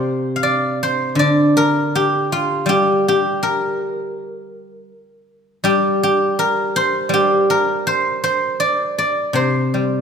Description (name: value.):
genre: chinese traditional, Chinese solo plucked strings.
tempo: 81 BPM.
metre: 4/4.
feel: rubato.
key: G yu mode.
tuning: A4 = 440 Hz.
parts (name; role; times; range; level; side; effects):
guzheng; solo; 0.0-10.0 s; C3 to C6; -15 LUFS; equal; none.
room: moderate recital hall reverb, RT60 1.6 s.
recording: minimal, uncompressed stereo recording.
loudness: -15 LUFS.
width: side -6 dB against mid.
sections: 0.0-10.0 A section.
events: none.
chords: none.